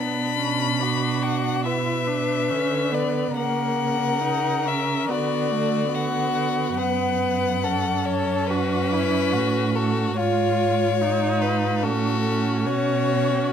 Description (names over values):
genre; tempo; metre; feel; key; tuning
classical, slow romantic movement for string quartet; 71 BPM; 4/4; rubato; B minor; A4 = 445 Hz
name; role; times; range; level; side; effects
clear violin; melody; 0.0-13.5 s; A4 to B5; -25 LUFS; left 9 dB; none
warm violin; second line; 0.0-13.5 s; D4 to B4; -27 LUFS; left 2 dB; none
warm viola; accompaniment; 0.0-13.5 s; A3 to E#4; -27 LUFS; right 4 dB; none
warm cello; bass; 0.0-13.5 s; F#2 to D3; -26 LUFS; right 5 dB; none
room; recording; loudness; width
moderate scoring stage reverb, RT60 1.6 s; close, detailed microphones; -20 LUFS; side -8 dB against mid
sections
0.0-13.5 A section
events
none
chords
0.0 Bm; 3.4 F#7/C#; 5.1 Bm/D; 6.8 F#m; 10.2 C#9/G#; 11.8 F#m/A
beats
0.81 1.66 2.51 | 3.37 4.25 5.11 5.95 | 6.79 7.64 8.50 9.34 | 10.19 11.02 11.84 12.67